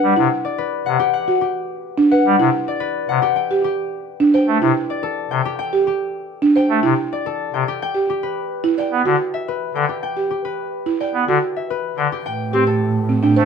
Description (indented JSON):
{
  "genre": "classical, minimalist pattern music",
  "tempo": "108 BPM",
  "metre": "4/4",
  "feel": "straight",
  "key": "A dorian",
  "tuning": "A4 = 440 Hz",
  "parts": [
    { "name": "concert harp", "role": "melody", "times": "0.0-13.5 s", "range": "G4 to G5", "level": "-23 LUFS", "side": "left 8 dB", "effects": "none" },
    { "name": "pipe organ, soft reed", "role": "accompaniment", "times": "0.0-13.5 s", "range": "C3 to C4", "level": "-19 LUFS", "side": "left 2 dB", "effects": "none" },
    { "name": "buzzing marimba with soft mallets", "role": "arpeggios", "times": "0.0-13.5 s", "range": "C4 to D5", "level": "-18 LUFS", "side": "right 4 dB", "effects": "none" },
    { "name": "rich double bass", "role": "bass", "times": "12.3-13.5 s", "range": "A2", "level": "-19 LUFS", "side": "right 4 dB", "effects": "none" }
  ],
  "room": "moderate large studio reverb, RT60 0.9 s",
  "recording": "none",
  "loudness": "-17 LUFS",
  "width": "side -6 dB against mid",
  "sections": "0.0-12.3 A section; 12.3-13.5 A section",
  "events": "none",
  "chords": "0.0 Cmaj9; 3.4 Am7; 7.8 Gmaj7; 12.3 Am7"
}